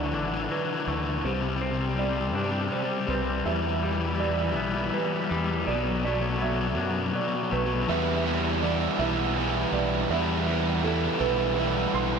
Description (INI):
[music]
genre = post-rock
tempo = 54 BPM (dotted quarters)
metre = 6/8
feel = straight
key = E minor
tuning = A4 = 440 Hz
[part]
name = warm analog pad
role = sustained chords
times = 0.0-7.9 s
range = C3 to B5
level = -37 LUFS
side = right 3 dB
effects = chorus
[part]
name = felt-muted upright piano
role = arpeggios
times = 0.0-12.2 s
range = A4 to C6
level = -32 LUFS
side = right 7 dB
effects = tape echo
[part]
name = twangy electric guitar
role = arpeggios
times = 0.0-7.9 s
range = E2 to D4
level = -34 LUFS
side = left 1 dB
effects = tape echo, slapback echo
[part]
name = crunchy overdriven guitar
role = riff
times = 0.0-12.2 s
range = B2 to E4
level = -28 LUFS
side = left 6 dB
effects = none
[part]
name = growling fingered electric bass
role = bass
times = 0.0-12.2 s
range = A1 to G2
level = -31 LUFS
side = right 1 dB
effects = overdrive
[part]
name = thick fuzz guitar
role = riff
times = 7.9-12.2 s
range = E3 to E4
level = -28 LUFS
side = right 11 dB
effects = distortion
[sound]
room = wet lush hall reverb, RT60 2.1 s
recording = big arena sound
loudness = -24 LUFS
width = side -6 dB against mid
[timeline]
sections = 0.0-7.9 A section; 7.9-12.2 B section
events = build-up 0.0-7.9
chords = 0.0 Dadd9; 1.3 Csus2; 3.5 Em; 5.7 Bm7; 7.9 Em7